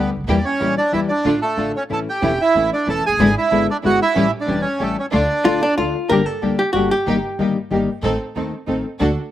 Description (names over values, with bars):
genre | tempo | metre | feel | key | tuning
tango | 186 BPM | 3/4 | rubato | D harmonic minor, G harmonic minor from 6.1 s | A4 = 440 Hz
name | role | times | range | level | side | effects
bandoneon | melody | 0.0-5.7 s | A3 to A5 | -18 LUFS | right 3 dB | none
nylon-string guitar | accompaniment | 0.0-9.1 s | D3 to G#4 | -20 LUFS | left 4 dB | none
rich studio string section | stabs | 0.0-9.1 s | G#3 to A4 | -25 LUFS | right 3 dB | slapback echo
upright bass | bass | 0.0-9.1 s | E1 to E2 | -26 LUFS | equal | none
archtop guitar, miked and amplified | second line | 5.4-7.5 s | D4 to Bb4 | -19 LUFS | left 1 dB | none
room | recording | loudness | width
little or no reverb | recorded outdoors, with no room sound | -16 LUFS | side -12 dB against mid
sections
0.0-6.1 A section; 6.1-9.3 B section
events
none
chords
0.3 Edim; 1.3 Dm/A; 1.9 A; 3.2 E7/G#; 4.2 A7; 5.1 Dm; 6.1 Gm; 7.1 Eb/G; 8.0 Adim